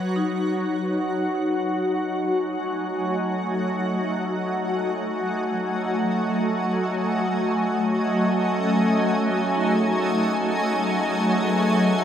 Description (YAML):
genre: ambient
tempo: free time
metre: none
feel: none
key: F# dorian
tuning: A4 = 440 Hz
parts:
  - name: shimmering ambient pad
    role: sustained chords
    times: 0.0-12.0 s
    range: F#3 to G#5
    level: -21 LUFS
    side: equal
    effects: chorus, built-in reverb, shimmer reverb
  - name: vibraphone with hard mallets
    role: arpeggios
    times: 0.2-12.0 s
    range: C#4 to B4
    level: -30 LUFS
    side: left 1 dB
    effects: diffuse ambient delay, shimmer reverb
room: wet cathedral reverb, RT60 6.0 s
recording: in a vast, echoing space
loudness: -21 LUFS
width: side -9 dB against mid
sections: 0.0-12.0 A section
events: fade-out on vibraphone 0.0-12.0; filter sweep on ambient pad 0.0-12.0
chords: 0.0 F#m69